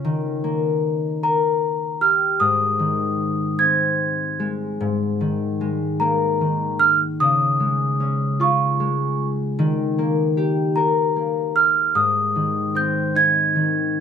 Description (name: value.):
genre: children's music, lullaby.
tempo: 50 BPM (dotted quarters).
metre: 6/8.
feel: straight.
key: Ab major.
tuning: A4 = 439 Hz.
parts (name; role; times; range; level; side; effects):
concert harp; accompaniment; 0.0-14.0 s; Ab2 to Bb4; -21 LUFS; left 2 dB; none.
large celesta; melody; 1.2-14.0 s; Bb5 to Ab6; -19 LUFS; right 2 dB; none.
room: light reverb.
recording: close, detailed microphones.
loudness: -18 LUFS.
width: side -7 dB against mid.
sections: 0.0-4.8 A section; 4.8-14.0 A section.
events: none.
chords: 0.0 Eb; 2.4 Ab; 4.8 Absus2; 7.2 Db; 9.6 Eb; 12.0 Ab.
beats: | 0.04 1.22 | 2.40 3.60 | 4.80 6.01 | 7.21 8.40 | 9.59 10.77 | 11.96 13.16.